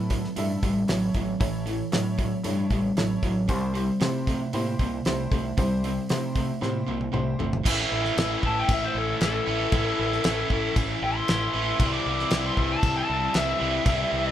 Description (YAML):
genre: classic rock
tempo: 115 BPM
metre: 4/4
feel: straight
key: unclear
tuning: A4 = 440 Hz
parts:
  - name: honky-tonk upright piano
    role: accompaniment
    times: 0.0-7.6 s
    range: E4 to E5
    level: -34 LUFS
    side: right 2 dB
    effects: none
  - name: distorted electric guitar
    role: riff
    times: 0.0-14.3 s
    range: A2 to E4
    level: -29 LUFS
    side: right 6 dB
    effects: distortion
  - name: overdriven semi-hollow guitar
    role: riff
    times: 0.0-14.3 s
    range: A2 to E4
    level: -29 LUFS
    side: left 4 dB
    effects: none
  - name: growling fingered electric bass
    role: bass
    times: 0.0-14.3 s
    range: G1 to C3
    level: -31 LUFS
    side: equal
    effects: overdrive
  - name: damped 70s drum kit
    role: drums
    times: 0.1-14.0 s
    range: crash cymbal, hi-hat, kick drum, snare drum, toms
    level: -28 LUFS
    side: equal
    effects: none
  - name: lead guitar through a small cranked amp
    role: melody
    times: 8.5-14.3 s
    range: A4 to D6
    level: -28 LUFS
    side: left 2 dB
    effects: overdrive
room: light reverb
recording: band playing live in one room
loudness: -23 LUFS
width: side -11 dB against mid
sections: 0.0-7.7 A section; 7.7-14.3 B section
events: drum fill 6.6-7.7; lead electric guitar solo 7.7-14.3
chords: 0.0 A; 3.5 C; 7.7 A; 11.8 C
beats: 0.37 0.89 | 1.41 1.93 2.45 2.97 | 3.49 4.01 4.54 5.06 | 5.58 6.10 6.62 7.14 | 7.66 8.18 8.70 9.22 | 9.73 10.25 10.77 11.29 | 11.80 12.32 12.83 13.35 | 13.87